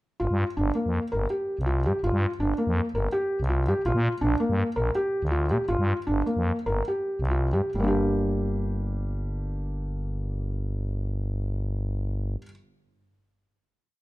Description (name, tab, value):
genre	contemporary instrumental, chamber music in an uneven meter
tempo	133-165 BPM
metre	5/4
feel	straight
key	G minor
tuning	A4 = 440 Hz
part	felt-muted upright piano	arpeggios	0.2-12.5 s	G3 to Bb4	-27 LUFS	equal	none
part	growling FM bass	bass	0.2-12.4 s	G1 to Bb2	-27 LUFS	equal	none
room	light reverb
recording	close, detailed microphones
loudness	-24 LUFS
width	side -18 dB against mid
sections	0.2-7.8 A section; 7.8-12.2 final chord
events	slowing down 4.6-7.8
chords	0.2 Gm7; 3.9 Bb; 5.7 Gm7; 7.8 Gm